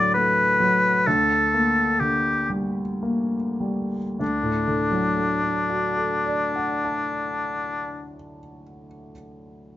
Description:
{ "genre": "classical, romantic duo for oboe and grand piano", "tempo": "50-67 BPM", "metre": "3/4", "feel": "rubato", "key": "D major", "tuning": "A4 = 440 Hz", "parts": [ { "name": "clear oboe", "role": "melody", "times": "0.0-8.1 s", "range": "D4 to D5", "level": "-21 LUFS", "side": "left 2 dB", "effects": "none" }, { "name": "clear grand piano", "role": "accompaniment", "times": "0.0-9.8 s", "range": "D2 to A5", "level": "-26 LUFS", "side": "equal", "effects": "none" } ], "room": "light reverb", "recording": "nothing above 7.5 kHz", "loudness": "-20 LUFS", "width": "side -14 dB against mid", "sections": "0.0-4.2 A section; 4.2-7.7 B section", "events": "slowing down 0.0-4.2", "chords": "0.0 D; 1.1 Gm/D; 4.2 D" }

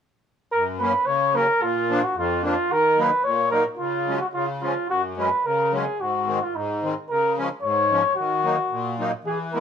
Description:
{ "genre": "alpine folk", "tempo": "110 BPM", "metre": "2/4", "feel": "straight", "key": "F# major", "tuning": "A4 = 441 Hz", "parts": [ { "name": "warm flugelhorn", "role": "melody", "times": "0.5-9.6 s", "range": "D#4 to C#5", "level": "-21 LUFS", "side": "equal", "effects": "none" }, { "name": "musette accordion", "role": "accompaniment", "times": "0.5-9.6 s", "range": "E#2 to E4", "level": "-27 LUFS", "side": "left 2 dB", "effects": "none" } ], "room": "moderate studio reverb, RT60 0.8 s", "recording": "band playing live in one room", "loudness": "-20 LUFS", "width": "side -7 dB against mid", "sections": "0.5-9.6 A section", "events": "none", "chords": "0.5 F#; 1.6 A#; 2.7 D#m; 3.8 C#sus4; 4.3 C#; 4.9 F#sus2; 6.0 G#; 7.1 C#; 8.2 D#m" }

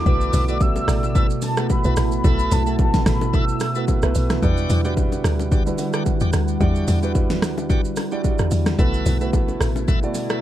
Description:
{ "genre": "amapiano", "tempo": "110 BPM", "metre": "4/4", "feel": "swing 55% on 16ths", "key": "unclear", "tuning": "A4 = 445 Hz", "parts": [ { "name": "warm velvety synth lead", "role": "melody", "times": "0.0-4.2 s", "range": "A5 to E6", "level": "-27 LUFS", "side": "left 1 dB", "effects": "chorus, tape echo" }, { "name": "dark baby grand piano", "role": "accompaniment", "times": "0.0-10.4 s", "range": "G3 to D5", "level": "-26 LUFS", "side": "right 4 dB", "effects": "none" }, { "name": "glassy FM pad", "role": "sustained chords", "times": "0.2-10.4 s", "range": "B2 to F#5", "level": "-28 LUFS", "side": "equal", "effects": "ensemble chorus, built-in reverb" }, { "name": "tight log drum bass", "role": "bass", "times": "0.0-10.1 s", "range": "A1 to E2", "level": "-22 LUFS", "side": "equal", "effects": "none" }, { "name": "bright tonewheel organ", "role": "stabs", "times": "0.1-10.4 s", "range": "E4 to E5", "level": "-33 LUFS", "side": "left 1 dB", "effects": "overdrive, slow rotary speaker, tape echo" }, { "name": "deep house drum kit", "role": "drums", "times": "0.1-10.4 s", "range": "hi-hat, kick drum, rim click, shaker, snare drum", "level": "-21 LUFS", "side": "equal", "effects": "none" }, { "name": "congas and bongos", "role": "percussion", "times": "0.1-10.3 s", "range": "none", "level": "-30 LUFS", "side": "left 4 dB", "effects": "none" } ], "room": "little or no reverb", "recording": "dark, warm production", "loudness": "-17 LUFS", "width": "side -12 dB against mid", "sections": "0.0-4.4 A section; 4.4-10.4 B section", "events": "drop 0.0-4.4", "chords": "0.1 B7sus4; 4.4 Em9; 8.8 B7sus4" }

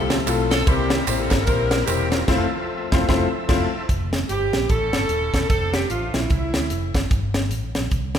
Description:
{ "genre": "uptempo gospel", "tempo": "149 BPM", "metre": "4/4", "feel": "swing 59% on 8ths", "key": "F major", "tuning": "A4 = 444 Hz", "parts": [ { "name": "bright saxophone section", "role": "melody", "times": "0.0-7.1 s", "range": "A3 to Bb4", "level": "-28 LUFS", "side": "left 2 dB", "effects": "none" }, { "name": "warm upright piano", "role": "accompaniment", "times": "0.0-3.7 s", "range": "C3 to C5", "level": "-24 LUFS", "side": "left 4 dB", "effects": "none" }, { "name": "overdriven tonewheel organ", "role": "sustained chords", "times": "0.0-3.9 s", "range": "F3 to E5", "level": "-30 LUFS", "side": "equal", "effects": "slow rotary speaker, chorus vibrato" }, { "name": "fingered electric bass", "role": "bass", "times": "0.0-8.2 s", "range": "Eb1 to D2", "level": "-26 LUFS", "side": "equal", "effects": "none" }, { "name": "crisp fusion drum kit", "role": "drums", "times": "0.1-8.2 s", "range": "crash cymbal, hi-hat, kick drum, ride cymbal, snare drum", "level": "-22 LUFS", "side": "equal", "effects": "none" }, { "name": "tambourine and handclaps", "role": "percussion", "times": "0.1-2.2 s", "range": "none", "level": "-32 LUFS", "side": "right 6 dB", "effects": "none" }, { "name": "breathy alto saxophone", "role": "melody", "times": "4.3-6.9 s", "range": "E4 to A4", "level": "-26 LUFS", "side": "right 4 dB", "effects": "none" } ], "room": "moderate scoring stage reverb, RT60 2.0 s", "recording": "recorded in a church or concert hall", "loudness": "-19 LUFS", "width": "side -9 dB against mid", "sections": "0.0-3.9 A section; 3.9-8.2 B section", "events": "band accent 2.3-3.9", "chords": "0.0 Fmaj7; 0.7 C7; 2.3 Fmaj7; 3.9 Fsus2; 4.7 A7; 5.5 Dm9/F; 7.1 Gmadd9" }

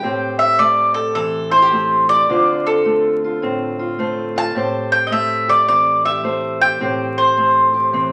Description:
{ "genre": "acoustic country blues, solo or duo", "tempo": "106 BPM", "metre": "4/4", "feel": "swing 65% on 8ths", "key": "A minor", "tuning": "A4 = 441 Hz", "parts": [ { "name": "mandolin", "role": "melody", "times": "0.0-8.1 s", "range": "A4 to A5", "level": "-17 LUFS", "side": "equal", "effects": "none" }, { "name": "fingerpicked steel-string acoustic guitar", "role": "accompaniment", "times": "0.0-8.1 s", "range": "A2 to C5", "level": "-24 LUFS", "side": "equal", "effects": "none" } ], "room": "moderate large studio reverb, RT60 1.1 s", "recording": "vinyl crackle", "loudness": "-16 LUFS", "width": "mono", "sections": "0.0-8.1 A section", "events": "none", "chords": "0.0 Am7; 2.3 Dm7; 4.6 Am7" }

